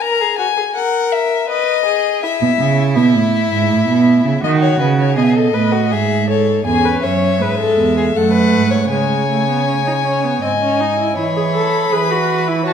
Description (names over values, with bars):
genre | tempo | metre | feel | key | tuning
classical, baroque-style fugue for string quartet | 81 BPM | 3/4 | straight | E major, C# minor from 6.7 s | A4 = 440 Hz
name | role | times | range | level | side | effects
warm violin | melody | 0.0-12.7 s | B4 to B5 | -19 LUFS | left 9 dB | none
dark violin | second line | 0.0-12.7 s | E4 to D#5 | -19 LUFS | left 3 dB | none
dark cello | bass | 2.4-12.7 s | E2 to E3 | -16 LUFS | right 5 dB | none
warm viola | accompaniment | 6.7-12.7 s | G#3 to A4 | -19 LUFS | right 3 dB | none
room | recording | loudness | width
wet recital hall reverb, RT60 1.5 s | none | -13 LUFS | side -8 dB against mid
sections
0.0-6.7 A section; 6.7-11.2 B section; 11.2-12.7 C section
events
none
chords
0.0 F#7; 1.5 B; 2.2 E; 3.7 A5; 4.4 B7; 5.9 E/G#; 6.7 C#m/E; 8.2 F#madd9; 8.9 G#sus4/C#; 10.4 G#5; 11.2 C#m/E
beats
| 0.02 0.75 1.49 | 2.23 2.96 3.70 | 4.43 5.17 5.92 | 6.66 7.41 8.16 | 8.91 9.67 10.43 | 11.18 11.93 12.67